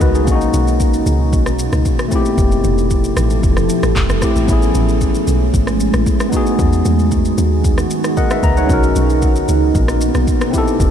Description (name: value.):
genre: amapiano.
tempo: 114 BPM.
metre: 4/4.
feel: straight.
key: unclear.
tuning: A4 = 440 Hz.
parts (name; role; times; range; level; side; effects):
tine electric piano; accompaniment; 0.0-10.9 s; A3 to Bb5; -19 LUFS; left 3 dB; wide subtle chorus.
deep dark ambient pad; sustained chords; 0.0-10.9 s; B2 to A4; -19 LUFS; right 2 dB; chorus, built-in reverb, sidechain pumping.
deep log drum bass; bass; 0.0-10.9 s; F1 to E2; -16 LUFS; equal; none.
deep house drum kit; drums; 0.0-10.9 s; handclaps, kick drum, rim click, shaker; -18 LUFS; equal; vintage 12-bit sampler grit.
room: moderate huge ambient reverb, RT60 7.2 s.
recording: dreamy mix soaked in reverb.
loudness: -12 LUFS.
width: side -9 dB against mid.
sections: 0.0-10.9 A section.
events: tine electric piano fill 7.9-8.7.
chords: 0.3 Bmaj9; 2.1 Fmaj9; 4.5 Amaj9; 6.3 Emaj9; 8.7 Bmaj9.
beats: | 0.27 0.80 1.33 1.85 | 2.38 2.91 3.43 3.96 | 4.48 5.01 5.54 6.06 | 6.59 7.12 7.64 8.17 | 8.70 9.22 9.75 10.27 | 10.80.